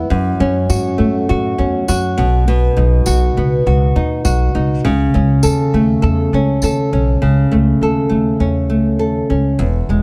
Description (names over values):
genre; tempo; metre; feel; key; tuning
acoustic pop; 101 BPM; 4/4; swing 55% on 16ths; unclear; A4 = 438 Hz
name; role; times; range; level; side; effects
nylon-string guitar; accompaniment; 0.0-10.0 s; E2 to A4; -18 LUFS; equal; none
upright bass; bass; 0.0-10.0 s; E1 to A2; -18 LUFS; equal; none
tambourine; percussion; 0.7-6.8 s; none; -30 LUFS; equal; none
room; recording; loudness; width
light reverb; dark, warm production; -15 LUFS; mono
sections
0.0-7.2 A section; 7.2-9.6 B section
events
none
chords
0.1 F#m; 2.2 B; 4.8 A/C#